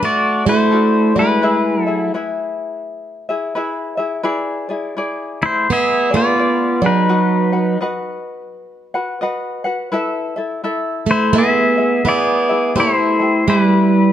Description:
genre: Hawaiian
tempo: 85 BPM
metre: 4/4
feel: swing 62% on 8ths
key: unclear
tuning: A4 = 436 Hz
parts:
  - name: pedal steel guitar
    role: melody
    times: 0.0-14.1 s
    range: D#4 to E5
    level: -16 LUFS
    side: left 2 dB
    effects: none
  - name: picked plugged-in swing-style acoustic guitar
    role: second line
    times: 0.0-14.1 s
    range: F#3 to B3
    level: -16 LUFS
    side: right 3 dB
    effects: none
  - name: tenor ukulele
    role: accompaniment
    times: 0.0-14.1 s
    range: D4 to F#5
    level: -22 LUFS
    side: left 2 dB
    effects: none
room: moderate echo chamber reverb, RT60 1.8 s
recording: dark, warm production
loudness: -14 LUFS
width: side -10 dB against mid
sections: 0.0-14.1 A section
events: none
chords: 0.0 D; 1.4 E; 4.3 E7; 7.1 B; 9.9 Esus4; 11.3 E; 12.8 Am7

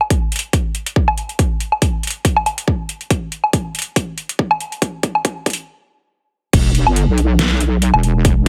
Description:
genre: heavy wobble dubstep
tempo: 140 BPM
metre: 4/4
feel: swing 55% on 16ths, half-time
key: E minor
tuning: A4 = 439 Hz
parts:
  - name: dubstep drum kit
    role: drums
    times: 0.0-8.3 s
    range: crash cymbal, hi-hat, snare drum, woodblock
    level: -21 LUFS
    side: equal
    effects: overdrive, high-pass filter on hats, high-pass filter on perc, high-pass filter on cymbals, high-pass filter on snare, high-pass filter on room
  - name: electronic kick drum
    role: drums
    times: 0.1-8.3 s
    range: none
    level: -19 LUFS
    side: equal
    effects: overdrive
  - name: wobble bass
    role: bass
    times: 6.5-8.5 s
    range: E1 to B1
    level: -17 LUFS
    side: equal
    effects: chorus, overdrive
room: little or no reverb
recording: high-pass filter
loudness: -18 LUFS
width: mono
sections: 0.0-6.5 A section; 6.5-8.5 B section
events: build-up 0.0-6.5; filter sweep 0.0-6.5; drum fill 3.1-5.7; stop 5.7-6.5; drop 6.5-8.5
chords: none

